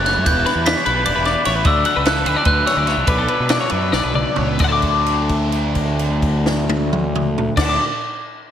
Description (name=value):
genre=math rock and midwest emo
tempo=258-303 BPM (eighths)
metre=7/8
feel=straight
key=D major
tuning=A4 = 442 Hz
part: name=glockenspiel with soft plastic mallets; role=melody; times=0.0-4.1 s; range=D6 to B6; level=-22 LUFS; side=equal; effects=slapback echo
part: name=twelve-string electric guitar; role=arpeggios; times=0.0-7.8 s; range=A4 to D6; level=-21 LUFS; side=left 4 dB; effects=vibrato effect, slapback echo
part: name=biting overdriven guitar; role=riff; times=0.0-7.8 s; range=F#2 to E4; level=-24 LUFS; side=equal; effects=phaser, slapback echo
part: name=fuzz fingered electric bass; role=bass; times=0.0-7.8 s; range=E1 to B2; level=-21 LUFS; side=equal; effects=overdrive
part: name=compact cocktail drum kit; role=drums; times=0.1-7.7 s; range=crash cymbal, kick drum, ride cymbal, snare drum, toms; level=-22 LUFS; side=equal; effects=none
room=moderate lush hall reverb, RT60 1.7 s, studio reverb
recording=big arena sound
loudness=-15 LUFS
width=side -9 dB against mid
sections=0.0-4.6 A section; 4.6-7.9 B section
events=slowing down 1.7-4.6; drum fill 3.9-4.6; held note 4.6-7.6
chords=0.3 Em7; 1.7 Dmaj7; 3.1 Bm7; 4.6 D